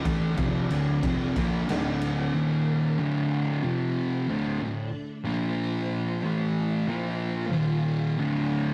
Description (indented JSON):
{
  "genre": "stoner and doom metal",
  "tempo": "92 BPM",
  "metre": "4/4",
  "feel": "straight",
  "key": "D phrygian",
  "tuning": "A4 = 435 Hz",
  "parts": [
    { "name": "string machine, full ensemble", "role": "sustained chords", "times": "0.0-8.7 s", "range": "D3 to F5", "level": "-42 LUFS", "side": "equal", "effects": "ensemble chorus" },
    { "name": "thick fuzz guitar", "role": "riff", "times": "0.0-8.7 s", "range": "D2 to Bb3", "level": "-32 LUFS", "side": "equal", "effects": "distortion" },
    { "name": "thick fuzz guitar", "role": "riff", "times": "0.0-8.7 s", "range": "D2 to Bb3", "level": "-29 LUFS", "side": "equal", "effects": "distortion" },
    { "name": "fuzz fingered electric bass", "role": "bass", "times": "0.1-2.3 s", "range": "D1 to Bb1", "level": "-37 LUFS", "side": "equal", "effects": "none" },
    { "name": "raw garage drum kit", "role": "drums", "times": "0.1-2.2 s", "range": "kick drum, ride cymbal, snare drum", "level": "-35 LUFS", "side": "equal", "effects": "none" }
  ],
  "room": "light reverb",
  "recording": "rough rehearsal-room recording, warm saturation",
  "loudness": "-27 LUFS",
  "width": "mono",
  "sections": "0.0-3.0 A section; 3.0-8.7 B section",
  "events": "none",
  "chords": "0.0 Dm; 2.3 Eb5; 3.0 D5; 3.6 F5; 4.3 D5; 5.3 Bb5; 6.2 A5; 6.9 Bb5; 7.5 Eb5; 8.2 D5"
}